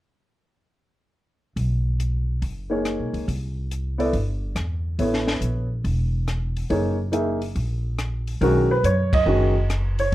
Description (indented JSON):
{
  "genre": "jazz piano trio",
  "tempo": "140 BPM",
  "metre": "4/4",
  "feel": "swing 67% on 8ths",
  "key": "B major",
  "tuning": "A4 = 440 Hz",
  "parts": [
    { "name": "upright bass", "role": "bass", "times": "1.6-10.1 s", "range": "E1 to F#2", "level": "-24 LUFS", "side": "equal", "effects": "none" },
    { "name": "compact cocktail drum kit", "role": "drums", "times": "1.6-10.1 s", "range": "hi-hat, kick drum, ride cymbal, rim click, snare drum", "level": "-28 LUFS", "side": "equal", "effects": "none" },
    { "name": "warm baby grand piano", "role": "melody", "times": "2.7-10.1 s", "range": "D#3 to E5", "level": "-22 LUFS", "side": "right 1 dB", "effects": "none" }
  ],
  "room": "light reverb",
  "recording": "worn, warbling old tape, cassette tape, warbly pitch drift, lossy compression artefacts",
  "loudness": "-21 LUFS",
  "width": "side -15 dB against mid",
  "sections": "1.6-8.4 A section; 8.4-10.1 B section",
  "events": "band accent 9.1",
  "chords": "1.6 Bmaj9; 3.3 C; 5.0 A; 6.7 F#; 8.4 Badd9"
}